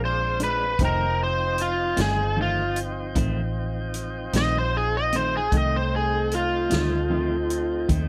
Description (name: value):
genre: slow blues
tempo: 51 BPM (dotted quarters)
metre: 12/8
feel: straight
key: F mixolydian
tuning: A4 = 440 Hz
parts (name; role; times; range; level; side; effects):
- dark concert grand piano; accompaniment; 0.0-8.1 s; A3 to G5; -39 LUFS; equal; none
- tonewheel organ; sustained chords; 0.0-8.1 s; F3 to G5; -36 LUFS; equal; slow rotary speaker
- vintage muted fingered electric bass; bass; 0.0-8.1 s; F1 to Eb2; -30 LUFS; equal; none
- overdriven slide guitar; melody; 0.1-7.9 s; F4 to Eb5; -26 LUFS; equal; none
- clean electric guitar; accompaniment; 0.4-8.1 s; F2 to D4; -32 LUFS; equal; harmonic tremolo
- vintage drum kit; drums; 0.4-8.1 s; hi-hat, kick drum, snare drum; -30 LUFS; equal; none
room: light reverb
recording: none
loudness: -24 LUFS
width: mono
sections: 0.0-8.1 A section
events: electric slide guitar solo 0.0-8.1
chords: 0.0 Bb7; 0.8 F7